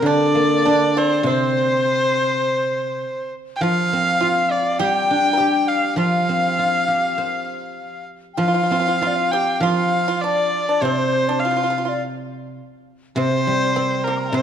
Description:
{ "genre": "chinese traditional, Chinese chamber ensemble", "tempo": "101 BPM", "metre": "4/4", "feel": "rubato", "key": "C shang mode", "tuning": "A4 = 440 Hz", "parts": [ { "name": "bright erhu", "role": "melody", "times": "0.0-14.4 s", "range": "Bb4 to G5", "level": "-21 LUFS", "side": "equal", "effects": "none" }, { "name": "bright reedy large dizi", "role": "second line", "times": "0.0-14.4 s", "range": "C5 to D6", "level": "-23 LUFS", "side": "left 4 dB", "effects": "none" }, { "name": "guzheng", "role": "accompaniment", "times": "0.0-14.4 s", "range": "C3 to C5", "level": "-22 LUFS", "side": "right 1 dB", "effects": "none" }, { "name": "pipa", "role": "second line", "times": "0.1-14.4 s", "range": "Bb3 to Bb4", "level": "-26 LUFS", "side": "right 7 dB", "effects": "none" } ], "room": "moderate scoring stage reverb, RT60 2.1 s", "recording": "dark, warm production", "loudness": "-17 LUFS", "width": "side -9 dB against mid", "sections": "0.0-14.4 A section", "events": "none", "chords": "none" }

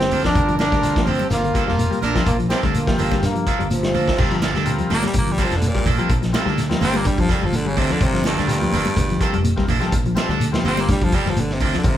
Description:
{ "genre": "afrobeat", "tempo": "125 BPM", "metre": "4/4", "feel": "swing 54% on 16ths", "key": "G minor", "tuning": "A4 = 440 Hz", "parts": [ { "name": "bright trombone", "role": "melody", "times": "0.0-3.2 s", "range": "Bb3 to D4", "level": "-22 LUFS", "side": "equal", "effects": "none" }, { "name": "brilliant trumpet", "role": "second line", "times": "0.0-3.2 s", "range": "F4 to Bb4", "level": "-30 LUFS", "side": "right 3 dB", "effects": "none" }, { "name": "clean electric guitar", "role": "arpeggios", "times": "0.0-11.8 s", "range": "D3 to G3", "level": "-26 LUFS", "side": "left 5 dB", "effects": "none" }, { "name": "fretless electric bass", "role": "bass", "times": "0.0-12.0 s", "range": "F1 to G2", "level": "-24 LUFS", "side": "equal", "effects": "none" }, { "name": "vintage drum kit", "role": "drums", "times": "0.0-12.0 s", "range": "crash cymbal, hi-hat, kick drum, snare drum", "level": "-23 LUFS", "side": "equal", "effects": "none" }, { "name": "shekere", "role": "percussion", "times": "0.0-12.0 s", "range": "none", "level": "-28 LUFS", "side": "left 1 dB", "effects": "none" }, { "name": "electric guitar at the edge of break-up", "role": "stabs", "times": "0.1-11.8 s", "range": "F3 to A4", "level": "-27 LUFS", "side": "right 4 dB", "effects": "none" }, { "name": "congas", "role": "percussion", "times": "0.1-11.7 s", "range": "none", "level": "-28 LUFS", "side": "right 2 dB", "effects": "none" }, { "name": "combo organ", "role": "accompaniment", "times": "0.3-12.0 s", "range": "G3 to C5", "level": "-29 LUFS", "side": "left 2 dB", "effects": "none" }, { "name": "clear trombone section", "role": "second line", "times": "3.2-4.2 s", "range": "F3 to Bb3", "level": "-24 LUFS", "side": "equal", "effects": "none" }, { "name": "raspy baritone saxophone", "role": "melody", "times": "4.9-12.0 s", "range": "G2 to C4", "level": "-24 LUFS", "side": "equal", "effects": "none" } ], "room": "moderate large studio reverb, RT60 0.9 s", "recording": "band playing live in one room", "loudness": "-17 LUFS", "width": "side -11 dB against mid", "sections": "0.0-4.2 A section; 4.2-12.0 B section", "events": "baritone saxophone solo 4.2-12.0", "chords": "0.0 Gm9" }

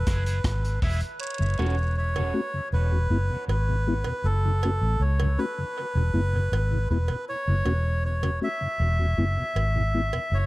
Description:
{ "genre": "dub reggae", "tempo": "79 BPM", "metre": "4/4", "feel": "straight", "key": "unclear", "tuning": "A4 = 440 Hz", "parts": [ { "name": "melodica", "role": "melody", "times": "0.0-10.5 s", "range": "A4 to E5", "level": "-30 LUFS", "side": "equal", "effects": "dub echo" }, { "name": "vintage muted fingered electric bass", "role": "bass", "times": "0.0-10.5 s", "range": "E1 to C#2", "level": "-24 LUFS", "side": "equal", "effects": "none" }, { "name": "electric guitar at the edge of break-up", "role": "accompaniment", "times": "0.1-1.7 s", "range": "B3 to A4", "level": "-39 LUFS", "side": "right 4 dB", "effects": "high-pass filter, dub echo" }, { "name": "vintage drum kit", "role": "drums", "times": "0.1-1.2 s", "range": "hi-hat, kick drum, rim click", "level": "-27 LUFS", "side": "equal", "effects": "none" }, { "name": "jawbone-type rattle and cowbell", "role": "percussion", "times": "1.2-10.3 s", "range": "none", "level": "-39 LUFS", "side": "right 6 dB", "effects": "high-pass filter on perc, dub echo" }, { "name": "mellow tonewheel organ", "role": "accompaniment", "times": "1.4-10.2 s", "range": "E2 to F#4", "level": "-31 LUFS", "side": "left 2 dB", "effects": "slow rotary speaker, high-pass filter, dub echo" } ], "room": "light reverb", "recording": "dark, warm production", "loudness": "-23 LUFS", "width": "side -19 dB against mid", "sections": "0.0-1.2 A section; 1.2-10.5 B section", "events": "break 0.0-1.2", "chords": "0.0 E; 1.2 F#m; 2.7 E; 4.2 F#m; 5.8 E; 7.3 F#5; 8.8 E" }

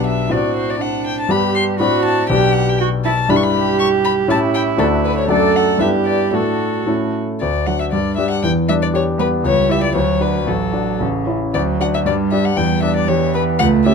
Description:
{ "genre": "quick classical-period movement for piano trio", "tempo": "118 BPM", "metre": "2/4", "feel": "rubato", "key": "G major, D major from 3.3 s", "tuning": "A4 = 440 Hz", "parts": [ { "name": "rich violin", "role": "melody", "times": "0.0-13.9 s", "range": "A4 to C#6", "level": "-21 LUFS", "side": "left 6 dB", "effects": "none" }, { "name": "rich cello", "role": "second line", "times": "0.0-13.9 s", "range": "C#3 to A4", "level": "-20 LUFS", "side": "right 10 dB", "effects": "none" }, { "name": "clear concert grand piano", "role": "accompaniment", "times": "0.0-13.9 s", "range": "A1 to G4", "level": "-17 LUFS", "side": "left 2 dB", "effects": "none" } ], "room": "light reverb", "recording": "dark, warm production", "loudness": "-14 LUFS", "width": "side -5 dB against mid", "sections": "0.0-7.4 A section; 7.4-13.9 B section", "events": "none", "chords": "0.3 D7/A; 1.3 G; 1.8 D7/A; 2.3 G/B; 3.3 Em7/G; 4.3 A7; 4.8 D; 5.3 D/F#; 5.8 Em7/G; 6.3 D/A; 6.9 A; 7.4 D; 7.9 G5; 8.4 Em7; 9.4 C#dim; 10.0 D; 10.5 D/A; 11.0 A; 11.5 D; 12.1 G5; 12.6 Em7" }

